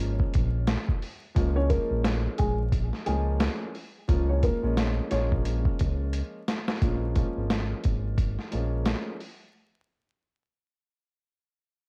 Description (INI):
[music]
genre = hip hop, boom-bap hip-hop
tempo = 88 BPM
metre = 4/4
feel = swing 59% on 16ths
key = Bb minor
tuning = A4 = 440 Hz
[part]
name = dark concert grand piano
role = accompaniment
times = 0.0-9.2 s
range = F3 to F4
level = -37 LUFS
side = equal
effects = high-pass filter, low-pass filter, cassette tape
[part]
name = smooth gliding synth bass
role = bass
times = 0.0-8.9 s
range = Ab1 to Db2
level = -30 LUFS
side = equal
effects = none
[part]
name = boom bap sampler-style drum kit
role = drums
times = 0.0-9.4 s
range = hi-hat, kick drum, snare drum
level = -30 LUFS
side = equal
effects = none
[part]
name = dark upright piano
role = melody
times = 1.6-5.3 s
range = Ab3 to Db5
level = -34 LUFS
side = equal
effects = high-pass filter, low-pass filter, cassette tape, tape echo
[sound]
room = light reverb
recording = home recording on cassette, vinyl crackle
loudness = -27 LUFS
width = mono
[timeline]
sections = 0.0-6.8 A section; 6.8-9.5 B section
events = drum fill 6.1-6.8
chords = 0.0 Bbm7; 1.4 Db6; 6.8 Bbm7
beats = 0.00 0.68 | 1.36 2.04 2.73 3.41 | 4.09 4.77 5.45 6.13 | 6.82 7.50 8.18 8.86